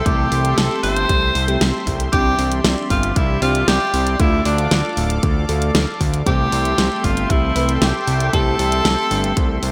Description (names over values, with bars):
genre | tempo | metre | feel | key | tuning
synthwave | 116 BPM | 4/4 | straight | A minor | A4 = 440 Hz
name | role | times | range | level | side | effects
warm tenor saxophone | melody | 0.0-9.7 s | D4 to C5 | -23 LUFS | equal | digital delay
warm analog pad | sustained chords | 0.0-9.7 s | G4 to D6 | -29 LUFS | equal | chorus, sidechain pumping
fat analog bass | bass | 0.0-9.7 s | D1 to D2 | -22 LUFS | equal | none
FM electric piano with soft pad layer | stabs | 0.1-9.6 s | E3 to C5 | -28 LUFS | equal | chorus, phaser
electronic kick drum | drums | 0.1-9.5 s | none | -22 LUFS | equal | none
pop drum kit | drums | 0.1-9.7 s | hi-hat, snare drum | -24 LUFS | equal | none
room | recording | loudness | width
light reverb, digital ambience | bright 1980s-style digital production, faint mains hum | -18 LUFS | mono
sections
0.0-9.7 A section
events
none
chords
0.0 Am7; 2.1 Cadd9; 4.2 Dm; 6.3 Am7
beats
| 0.06 0.58 1.09 1.61 | 2.13 2.65 3.16 3.68 | 4.20 4.71 5.23 5.75 | 6.27 6.78 7.30 7.82 | 8.34 8.85 9.37